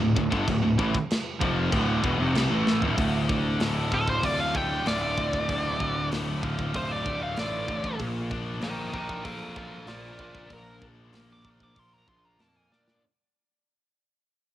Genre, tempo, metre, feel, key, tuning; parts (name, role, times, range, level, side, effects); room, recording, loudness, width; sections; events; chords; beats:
heavy metal; 96 BPM; 4/4; straight; D minor; A4 = 440 Hz
high-gain distorted guitar; riff; 0.0-13.0 s; D2 to Bb4; -31 LUFS; right 8 dB; distortion, cassette tape
scooped high-gain guitar; riff; 0.0-13.0 s; D2 to Bb4; -29 LUFS; left 5 dB; distortion, cassette tape
fuzz picked electric bass; bass; 0.0-13.0 s; D1 to Bb2; -32 LUFS; equal; overdrive
tight metal drum kit; drums; 0.2-13.0 s; china cymbal, hi-hat, kick drum, snare drum, toms; -32 LUFS; equal; cassette tape
high-gain lead guitar; melody; 3.9-13.0 s; F4 to D6; -31 LUFS; equal; distortion, cassette tape
small room ambience; home recording on cassette; -24 LUFS; side -12 dB against mid
0.0-3.0 A section; 3.0-13.0 B section
drum fill 2.7-3.0, 12.7-13.0; fade-out 3.0-13.0; lead electric guitar solo 3.0-13.0
0.0 Dm; 8.0 Bb
| 0.48 1.10 1.73 2.35 | 2.98 3.60 4.23 4.86 | 5.49 6.11 6.74 7.37 | 7.99 8.62 9.25 9.88 | 10.50 11.13 11.76 12.38